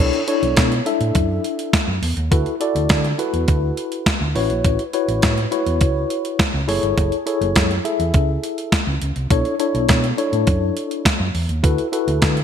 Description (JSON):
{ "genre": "early-eighties boogie funk", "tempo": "103 BPM", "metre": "4/4", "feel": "straight", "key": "B dorian", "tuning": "A4 = 440 Hz", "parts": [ { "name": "mellow tine electric piano", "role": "accompaniment", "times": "0.0-12.4 s", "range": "D4 to E5", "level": "-21 LUFS", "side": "left 3 dB", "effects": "medium stereo tremolo" }, { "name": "hollow-body short-scale fingered electric bass", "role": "bass", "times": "0.0-12.4 s", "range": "F#1 to D3", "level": "-21 LUFS", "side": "right 1 dB", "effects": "none" }, { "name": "clean 12-bit digital drum machine", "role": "drums", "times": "0.1-12.4 s", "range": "hi-hat, kick drum, snare drum", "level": "-19 LUFS", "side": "right 1 dB", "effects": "gated reverb" } ], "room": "moderate lush hall reverb, RT60 1.7 s, digital ambience", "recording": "bright 1980s-style digital production", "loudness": "-17 LUFS", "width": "side -8 dB against mid", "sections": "0.0-12.4 A section", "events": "none", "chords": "0.0 Bm11; 2.3 D6; 4.4 A6; 6.7 F#m7; 9.3 Bm11; 11.6 D6", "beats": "0.57 1.15 1.73 | 2.32 2.90 3.48 4.06 | 4.65 5.23 5.81 6.39 | 6.98 7.56 8.14 8.72 | 9.31 9.89 10.47 11.05 | 11.64 12.22" }